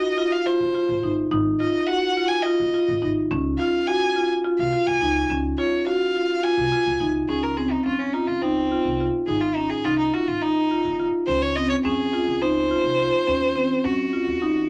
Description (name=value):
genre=contemporary instrumental, chamber music in an uneven meter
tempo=211 BPM (eighths)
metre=7/8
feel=straight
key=Db major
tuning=A4 = 440 Hz
part: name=clear violin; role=melody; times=0.0-14.7 s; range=C4 to Ab5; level=-28 LUFS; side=equal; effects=none
part: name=marimba with soft mallets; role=arpeggios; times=0.0-14.6 s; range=C4 to Gb4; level=-24 LUFS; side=equal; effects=none
part: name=upright bass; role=bass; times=0.6-14.7 s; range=Gb1 to Gb2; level=-36 LUFS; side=equal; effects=none
room=moderate studio reverb, RT60 0.5 s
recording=none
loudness=-22 LUFS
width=mono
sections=0.0-7.3 A section; 7.3-14.7 B section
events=none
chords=0.0 Ab7(no3); 3.3 Db; 7.3 Dbmaj7; 9.3 Ab5; 11.3 Dbmaj7; 13.3 Ebm9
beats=0.18 0.46 0.75 1.03 | 1.32 1.60 1.89 2.17 2.46 2.74 3.02 | 3.31 3.59 3.88 4.16 4.45 4.73 5.02 | 5.30 5.58 5.87 6.15 6.44 6.72 7.01 | 7.29 7.58 7.86 8.14 8.43 8.71 9.00 | 9.28 9.57 9.85 10.14 10.42 10.71 10.99 | 11.28 11.56 11.85 12.13 12.42 12.70 12.99 | 13.27 13.56 13.84 14.13 14.41